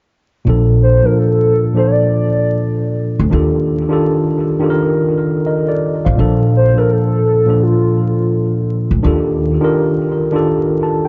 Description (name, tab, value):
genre	hip hop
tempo	84 BPM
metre	4/4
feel	swing 62% on 16ths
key	Bb major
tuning	A4 = 439 Hz
part	tine electric piano	accompaniment	0.4-11.1 s	Bb2 to A5	-16 LUFS	equal	cassette tape, low-pass filter, tape echo
part	upright bass	bass	0.5-9.6 s	A1 to Eb2	-17 LUFS	equal	none
part	warbly nostalgic lead	melody	0.8-8.7 s	F4 to D5	-19 LUFS	equal	chorus, tremolo, low-pass filter, tape echo
room	moderate echo chamber reverb, RT60 1.9 s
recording	echo-heavy mix, vinyl crackle, nothing above 7.5 kHz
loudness	-14 LUFS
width	mono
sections	0.5-11.1 A section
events	tine electric piano fill 10.5-11.1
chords	0.5 Bbmaj7; 3.3 Ebmaj9#11; 6.2 Bbmaj7; 9.0 Ebmaj9#11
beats	| 0.46 1.17 1.89 2.60 | 3.32 4.03 4.74 5.46 | 6.17 6.89 7.60 8.32 | 9.03 9.74 10.46